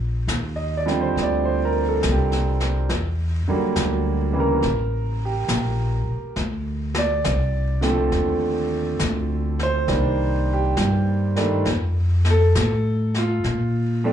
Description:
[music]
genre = jazz ballad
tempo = 68 BPM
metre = 4/4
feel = swing 67% on 8ths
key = Bb major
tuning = A4 = 440 Hz
[part]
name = upright bass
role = bass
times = 0.0-14.1 s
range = A1 to Bb2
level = -22 LUFS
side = equal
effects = none
[part]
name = jazz brush drum kit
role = drums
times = 0.3-14.1 s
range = brushed snare drum, hi-hat, snare drum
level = -29 LUFS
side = left 2 dB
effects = slapback echo
[part]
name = clear concert grand piano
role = accompaniment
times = 0.6-14.1 s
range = Db3 to Eb5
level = -23 LUFS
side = right 2 dB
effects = plate reverb, slapback echo
[sound]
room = light reverb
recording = live gig heard through the venue's PA, club reverb, nothing above 10.9 kHz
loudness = -19 LUFS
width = side -9 dB against mid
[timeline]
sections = 0.0-14.1 A section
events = none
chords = 0.0 Bb69; 2.9 Em7b5; 4.6 Gmadd9/A; 6.4 Dm7; 9.9 Cm7; 11.7 F; 13.4 Bb5

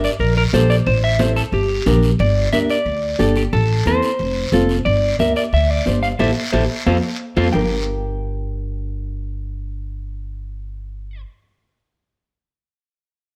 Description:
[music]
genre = latin, cumbia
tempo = 180 BPM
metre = 4/4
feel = straight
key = G dorian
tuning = A4 = 440 Hz
[part]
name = clean electric guitar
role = melody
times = 0.0-11.2 s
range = G4 to G5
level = -23 LUFS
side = equal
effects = spring reverb, slapback echo, plate reverb
[part]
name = nylon-string guitar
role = accompaniment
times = 0.0-11.2 s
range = C4 to C5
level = -24 LUFS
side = equal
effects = none
[part]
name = upright bass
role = bass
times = 0.0-11.2 s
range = F1 to F2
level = -22 LUFS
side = equal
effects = none
[part]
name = guiro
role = percussion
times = 0.0-7.6 s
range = none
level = -33 LUFS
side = equal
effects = none
[part]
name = congas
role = percussion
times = 0.2-7.6 s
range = none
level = -26 LUFS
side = equal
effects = none
[sound]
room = light reverb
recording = close, detailed microphones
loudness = -18 LUFS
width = mono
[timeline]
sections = 0.0-2.2 A section; 2.2-7.5 B section; 7.5-10.2 C section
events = band accent 6.2-7.5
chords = 0.0 Gm; 0.9 Am; 1.5 Gm; 3.5 Am; 4.2 F; 4.9 Gm; 6.2 Am7; 6.9 F; 7.5 Gm

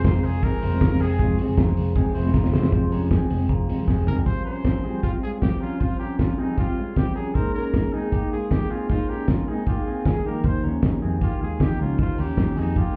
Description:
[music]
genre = jangly indie pop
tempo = 155 BPM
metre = 4/4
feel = straight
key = F harmonic minor, F minor from 4.3 s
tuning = A4 = 440 Hz
[part]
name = bright trumpet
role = melody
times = 0.0-1.4, 4.1-13.0 s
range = Eb4 to C5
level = -35 LUFS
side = equal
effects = none
[part]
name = fingerpicked plugged-in steel-string acoustic guitar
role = accompaniment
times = 0.0-13.0 s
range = F2 to Ab4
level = -29 LUFS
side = equal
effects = none
[part]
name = electric guitar through a small old amp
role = arpeggios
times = 0.0-13.0 s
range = Ab3 to C5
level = -34 LUFS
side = equal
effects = none
[part]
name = vintage muted picked electric bass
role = bass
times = 0.0-4.2, 10.4-12.8 s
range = E1 to F2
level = -26 LUFS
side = equal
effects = none
[part]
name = cloth-damped thuddy drum kit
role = drums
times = 0.0-12.9 s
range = hi-hat, kick drum, ride cymbal, snare drum, toms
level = -25 LUFS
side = equal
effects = none
[sound]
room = light reverb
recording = heard muffled through a wall, club reverb, EQ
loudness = -23 LUFS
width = mono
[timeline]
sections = 0.0-2.7 A section; 2.7-4.3 B section; 4.3-13.0 C section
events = drum fill 2.3-2.7, 3.9-4.3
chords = 0.0 Fm; 4.3 Fsus2; 7.4 Absus2

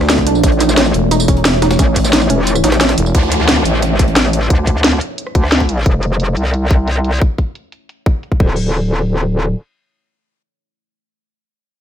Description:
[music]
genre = dark technical drum and bass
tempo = 177 BPM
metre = 4/4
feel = straight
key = unclear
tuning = A4 = 440 Hz
[part]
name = deep dark ambient pad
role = sustained chords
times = 0.0-3.1 s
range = A3 to D5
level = -19 LUFS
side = equal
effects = chorus, built-in reverb, sidechain pumping
[part]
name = growling FM bass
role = bass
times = 0.0-3.1 s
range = E1 to D2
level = -15 LUFS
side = equal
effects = none
[part]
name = breakbeat sampler-style drum kit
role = drums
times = 0.0-4.4 s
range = hi-hat, snare drum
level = -25 LUFS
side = equal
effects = none
[part]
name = drum and bass drum kit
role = drums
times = 0.0-8.5 s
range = crash cymbal, hi-hat, rim click, snare drum, tambourine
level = -16 LUFS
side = equal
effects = low-pass filter on hats, studio reverb, low-pass filter on cymbals, low-pass filter on perc, low-pass filter on snare
[part]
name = warbly dusty pluck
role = arpeggios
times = 0.1-2.9 s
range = C#4 to Eb4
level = -20 LUFS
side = right 5 dB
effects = chorus, cassette tape, sidechain pumping, tape echo
[part]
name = electronic kick drum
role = drums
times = 0.2-8.5 s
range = none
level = -14 LUFS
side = equal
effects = studio reverb
[part]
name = metallic wobble bass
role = bass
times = 0.4-9.5 s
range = D1 to D2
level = -15 LUFS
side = equal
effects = chorus, tube saturation
[part]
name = downlifter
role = sound effects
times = 3.1-5.9 s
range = none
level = -21 LUFS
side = equal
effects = none
[sound]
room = digital ambience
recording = none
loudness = -12 LUFS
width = side -10 dB against mid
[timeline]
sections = 0.0-3.1 A section; 3.1-8.6 B section; 8.6-11.3 C section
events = drop 0.0-3.1; kick drops out 2.5-3.1; filter sweep on drum 3.1-8.6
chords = 0.4 A; 3.1 D5; 5.9 F5; 8.4 N.C.

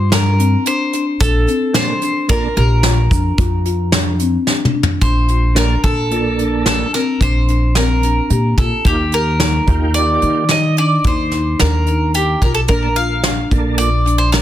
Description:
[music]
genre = progressive instrumental, band music in an uneven meter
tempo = 110 BPM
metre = 7/4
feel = straight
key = Bb major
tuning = A4 = 440 Hz
[part]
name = bowl-back mandolin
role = melody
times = 0.0-14.4 s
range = G4 to F5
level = -19 LUFS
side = right 1 dB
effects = plate reverb, ping-pong delay
[part]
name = marimba with soft mallets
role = arpeggios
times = 0.0-14.4 s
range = C4 to G4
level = -21 LUFS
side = left 4 dB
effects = plate reverb
[part]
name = upright bass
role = bass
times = 0.0-14.4 s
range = Bb1 to Eb3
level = -16 LUFS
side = equal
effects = none
[part]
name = soft brush drum kit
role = drums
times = 0.1-14.4 s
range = hi-hat, kick drum, snare drum, toms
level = -18 LUFS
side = equal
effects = soft clipping on snare
[part]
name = egg shaker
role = percussion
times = 1.2-4.3 s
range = none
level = -34 LUFS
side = right 9 dB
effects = none
[part]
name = tonewheel organ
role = accompaniment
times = 1.7-13.9 s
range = Bb2 to A4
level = -23 LUFS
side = right 5 dB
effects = chorus vibrato, fast rotary speaker, plate reverb
[sound]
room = light reverb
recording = dense, heavily limited modern master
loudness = -13 LUFS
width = side -12 dB against mid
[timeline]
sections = 0.0-5.0 A section; 5.0-14.4 B section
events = drum fill 4.5-5.0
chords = 0.0 Gm; 1.2 Bbmaj7; 8.9 Ebadd9; 12.7 Bbmaj7

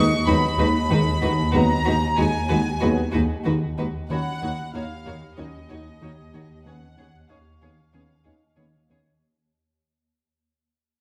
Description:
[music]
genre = cinematic, suspense film score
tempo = 94 BPM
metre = 4/4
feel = straight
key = unclear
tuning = A4 = 443 Hz
[part]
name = warm symphonic violin section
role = melody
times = 0.0-8.9 s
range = Eb5 to Db6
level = -29 LUFS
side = equal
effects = none
[part]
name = rich chamber violin section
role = second line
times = 0.0-9.0 s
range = Gb4 to Db5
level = -34 LUFS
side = equal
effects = none
[part]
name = dark symphonic viola section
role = accompaniment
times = 0.0-9.0 s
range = Ab3 to Eb4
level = -30 LUFS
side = equal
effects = none
[part]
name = fat analog bass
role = riff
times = 0.0-9.1 s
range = Eb3 to Eb4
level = -30 LUFS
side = equal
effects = none
[part]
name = rich symphonic double bass section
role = bass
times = 0.0-9.0 s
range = Eb2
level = -31 LUFS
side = equal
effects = none
[part]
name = warm symphonic cello section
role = bass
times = 0.0-9.0 s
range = Eb2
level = -32 LUFS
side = equal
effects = none
[part]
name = swarming drone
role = drone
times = 0.2-9.2 s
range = Eb2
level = -32 LUFS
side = equal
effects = built-in reverb
[part]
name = large celesta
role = texture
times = 0.0-9.2 s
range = Eb4 to Eb6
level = -36 LUFS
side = equal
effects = none
[part]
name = mellow French horn section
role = sustained chords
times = 0.3-8.2 s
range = Gb3 to Db4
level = -31 LUFS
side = equal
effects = none
[sound]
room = wet scoring stage reverb, RT60 1.5 s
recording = none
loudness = -22 LUFS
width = mono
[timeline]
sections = 0.0-9.2 A section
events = fade-out 0.0-9.2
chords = 0.0 Abm7/Eb; 4.1 Ebm7; 6.7 Db7/Eb

